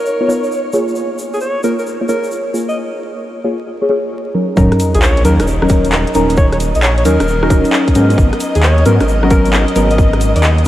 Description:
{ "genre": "UK garage, two-step garage", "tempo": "133 BPM", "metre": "4/4", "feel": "swing 66% on 16ths", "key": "Eb minor", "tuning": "A4 = 440 Hz", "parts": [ { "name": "breathy alto saxophone", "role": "melody", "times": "0.0-10.5 s", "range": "Ab4 to Eb5", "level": "-21 LUFS", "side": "equal", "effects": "tape echo" }, { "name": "soft string machine", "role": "sustained chords", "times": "0.0-10.7 s", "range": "Db5 to Eb5", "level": "-25 LUFS", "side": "equal", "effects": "ensemble chorus, sidechain pumping" }, { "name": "tube shaker", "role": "percussion", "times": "0.1-10.7 s", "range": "none", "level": "-33 LUFS", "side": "left 1 dB", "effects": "none" }, { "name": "deep mellow chord stab", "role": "stabs", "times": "0.2-10.7 s", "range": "Gb3 to Db5", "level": "-16 LUFS", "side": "equal", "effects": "chorus, phaser, tape echo" }, { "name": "dark detuned saw bass", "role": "bass", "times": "4.6-10.6 s", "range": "Eb1 to Ab2", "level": "-14 LUFS", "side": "equal", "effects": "none" }, { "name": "electronic kick drum", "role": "drums", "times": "4.6-10.1 s", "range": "none", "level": "-12 LUFS", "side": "equal", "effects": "small room ambience" }, { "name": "sub drop", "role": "sound effects", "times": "4.6-6.4 s", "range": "none", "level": "-20 LUFS", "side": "equal", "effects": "none" }, { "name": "garage drum kit", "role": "drums", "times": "4.7-10.6 s", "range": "congas, handclaps, hi-hat, rim click", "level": "-19 LUFS", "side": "equal", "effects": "small room ambience" } ], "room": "moderate huge ambient reverb, RT60 8.1 s", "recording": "dreamy mix soaked in reverb, vinyl crackle", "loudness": "-11 LUFS", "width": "side -14 dB against mid", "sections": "0.0-4.6 A section; 4.6-10.7 B section", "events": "drop 4.6-10.7; impact 4.6-6.4", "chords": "0.0 Db9; 0.7 Bbm7; 4.6 Ebm7; 8.0 Abm11" }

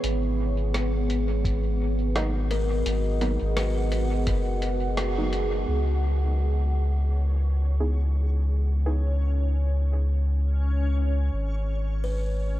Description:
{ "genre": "ambient dub", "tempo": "85 BPM", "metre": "4/4", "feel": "swing 58% on 16ths", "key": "C# dorian", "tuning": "A4 = 443 Hz", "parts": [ { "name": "deep dark ambient pad", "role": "sustained chords", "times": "0.0-12.6 s", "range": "B3 to F#5", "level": "-32 LUFS", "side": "right 1 dB", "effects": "chorus, built-in reverb" }, { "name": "warm sub bass", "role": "bass", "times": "0.0-12.6 s", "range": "F#1 to C#2", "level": "-24 LUFS", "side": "equal", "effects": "none" }, { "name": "lo-fi sampler-style drum kit", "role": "drums", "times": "0.0-5.5 s", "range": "hi-hat, rim click", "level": "-36 LUFS", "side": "equal", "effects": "low-pass filter on snare, low-pass filter on hats, low-pass filter on room, dub echo" }, { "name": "electronic kick drum", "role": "drums", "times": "1.4-4.4 s", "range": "none", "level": "-27 LUFS", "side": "equal", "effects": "none" }, { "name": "filtered dub chord stab", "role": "stabs", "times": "2.2-9.0 s", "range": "F#3 to G#4", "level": "-36 LUFS", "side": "right 2 dB", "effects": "chorus, dub echo" }, { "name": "buzzing kalimba", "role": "arpeggios", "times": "2.5-7.0, 12.0-12.6 s", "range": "A#4 to B4", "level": "-35 LUFS", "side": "left 3 dB", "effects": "dub echo" }, { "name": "backwards swelling texture", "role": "texture", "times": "7.1-12.6 s", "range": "C#4 to C#5", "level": "-37 LUFS", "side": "left 3 dB", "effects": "built-in reverb, analog chorus" } ], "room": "light reverb", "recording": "none", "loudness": "-23 LUFS", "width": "side -15 dB against mid", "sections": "0.0-5.7 A section; 5.7-12.6 B section", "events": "band accent 5.0-5.3; filter sweep on ambient pad 5.7-12.6", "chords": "0.0 G#m7; 5.7 C#m7; 11.3 G#m7" }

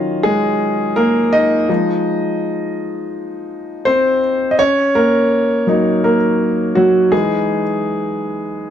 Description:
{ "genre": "soul", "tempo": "83 BPM", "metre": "4/4", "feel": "swing 54% on 16ths", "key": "unclear", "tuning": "A4 = 440 Hz", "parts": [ { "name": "warm concert grand piano", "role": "solo", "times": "0.0-8.7 s", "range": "Eb3 to F5", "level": "-14 LUFS", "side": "equal", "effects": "none" } ], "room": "light reverb", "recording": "none", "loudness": "-13 LUFS", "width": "side -9 dB against mid", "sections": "0.0-4.6 A section; 4.6-8.7 A section", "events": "grand piano solo 0.0-4.6, 4.6-8.7", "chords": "0.0 Ebm9; 1.7 Fm7; 4.6 Gb6; 7.1 Emaj7" }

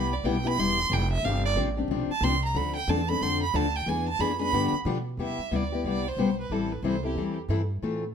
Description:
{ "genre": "acoustic string swing (jazz manouche)", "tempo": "182 BPM", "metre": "4/4", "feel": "swing 62% on 8ths", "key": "unclear", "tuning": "A4 = 440 Hz", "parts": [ { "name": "warm violin", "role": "melody", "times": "0.0-7.4 s", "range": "G4 to C6", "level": "-29 LUFS", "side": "right 5 dB", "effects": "none" }, { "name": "picked steel-string acoustic guitar", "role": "accompaniment", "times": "0.0-8.0 s", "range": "C3 to A4", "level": "-28 LUFS", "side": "left 4 dB", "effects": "none" }, { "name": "upright bass", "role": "bass", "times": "0.0-8.1 s", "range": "E1 to B2", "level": "-30 LUFS", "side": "right 1 dB", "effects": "none" } ], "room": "light reverb", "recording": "none", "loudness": "-24 LUFS", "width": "side -7 dB against mid", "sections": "0.0-5.2 A section; 5.2-8.1 B section", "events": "violin solo 0.0-5.2", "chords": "0.0 Cmaj7; 1.2 G7sus4; 2.6 Dm9; 3.9 E7b9; 4.5 G7; 5.2 Cmaj9; 6.5 Am7" }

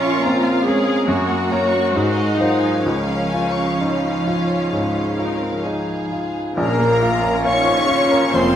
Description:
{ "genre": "classical", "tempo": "62-72 BPM", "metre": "4/4", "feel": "rubato", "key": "Db major", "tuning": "A4 = 440 Hz", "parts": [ { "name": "clear baby grand piano", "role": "melody", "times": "0.0-8.6 s", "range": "Bb1 to Db6", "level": "-20 LUFS", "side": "left 1 dB", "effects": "none" }, { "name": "clear studio violin section", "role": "melody", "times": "0.0-8.6 s", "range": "Db5 to Db6", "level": "-27 LUFS", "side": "left 3 dB", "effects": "none" }, { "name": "rich studio violin section", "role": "second line", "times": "0.0-8.6 s", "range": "F4 to Db6", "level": "-26 LUFS", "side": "left 1 dB", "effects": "none" }, { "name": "rich studio viola section", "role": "accompaniment", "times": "0.0-8.6 s", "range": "Db3 to Ab4", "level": "-24 LUFS", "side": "right 1 dB", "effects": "none" }, { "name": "rich studio cello section", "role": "bass", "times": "0.0-8.6 s", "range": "F3 to Db4", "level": "-25 LUFS", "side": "right 2 dB", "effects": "none" }, { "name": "clear clarinet", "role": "second line", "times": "6.6-8.6 s", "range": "Bb4 to Db5", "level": "-25 LUFS", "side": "left 1 dB", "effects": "none" }, { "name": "mellow hollow concert flute", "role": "second line", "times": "6.6-8.6 s", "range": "Bb4 to Db5", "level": "-23 LUFS", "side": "left 1 dB", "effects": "none" }, { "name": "mellow French horn section", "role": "sustained chords", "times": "6.6-8.6 s", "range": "Eb4 to F4", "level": "-27 LUFS", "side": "left 2 dB", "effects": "none" }, { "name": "warm trombone section", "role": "sustained chords", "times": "6.6-8.6 s", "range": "F3 to Db4", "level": "-28 LUFS", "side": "right 3 dB", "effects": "none" }, { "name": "rich studio double bass section", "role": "bass", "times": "6.6-8.6 s", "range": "F1 to Bb1", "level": "-26 LUFS", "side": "right 3 dB", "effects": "none" } ], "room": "wet recital hall reverb, RT60 1.6 s", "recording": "none", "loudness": "-16 LUFS", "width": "side -10 dB against mid", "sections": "0.0-6.6 A section; 6.6-8.6 B section", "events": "none", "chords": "0.0 Bbm; 1.1 Gb; 1.9 Ab13; 2.8 Db; 6.6 Bbm" }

